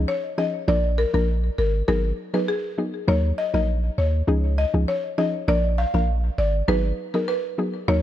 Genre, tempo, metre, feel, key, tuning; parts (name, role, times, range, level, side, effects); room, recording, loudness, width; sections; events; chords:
dancehall; 100 BPM; 4/4; straight; A4 = 439 Hz
soft round pluck; accompaniment; 0.0-8.0 s; F3 to Bb4; -26 LUFS; left 1 dB; chorus
punchy sub bass; bass; 0.0-8.0 s; Ab1 to Eb2; -22 LUFS; equal
buzzing marimba with medium mallets; melody; 0.1-8.0 s; Ab4 to F5; -25 LUFS; left 2 dB; ping-pong delay
small room ambience; -20 LUFS; side -12 dB against mid
0.0-8.0 A section
0.0 Dbadd9; 0.7 Bb; 1.9 Abm7; 3.1 Ebm; 4.3 Dbadd9; 5.5 Bb; 6.7 Abm7